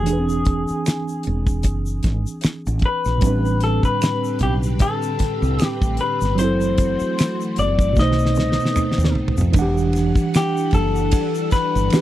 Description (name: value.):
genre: R&B, neo-soul.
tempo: 76 BPM.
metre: 4/4.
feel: swing 55% on 16ths.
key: E minor.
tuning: A4 = 440 Hz.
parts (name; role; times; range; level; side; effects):
electric guitar through a small old amp; melody; 0.0-12.0 s; G4 to D#5; -23 LUFS; left 4 dB; none.
tine electric piano; accompaniment; 0.0-12.0 s; A2 to F#5; -23 LUFS; right 2 dB; medium stereo tremolo.
woody fretless electric bass; bass; 0.0-12.0 s; E1 to F2; -21 LUFS; equal; wide subtle chorus.
damped 70s drum kit; drums; 0.1-12.0 s; hi-hat, kick drum, ride cymbal, snare drum, toms; -19 LUFS; equal; none.
egg shaker and finger snaps; percussion; 0.1-12.0 s; none; -35 LUFS; right 1 dB; none.
string machine, violins; sustained chords; 3.2-12.0 s; D3 to F#5; -28 LUFS; equal; ensemble chorus.
room: little or no reverb.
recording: dry, close 1970s-style studio recording.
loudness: -17 LUFS.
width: side -13 dB against mid.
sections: 0.0-9.5 A section; 9.5-12.0 B section.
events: drum fill 8.0-9.5.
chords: 0.1 E7b13; 3.2 Am11; 6.4 F#m7b5; 8.0 B7b9; 9.5 Em9.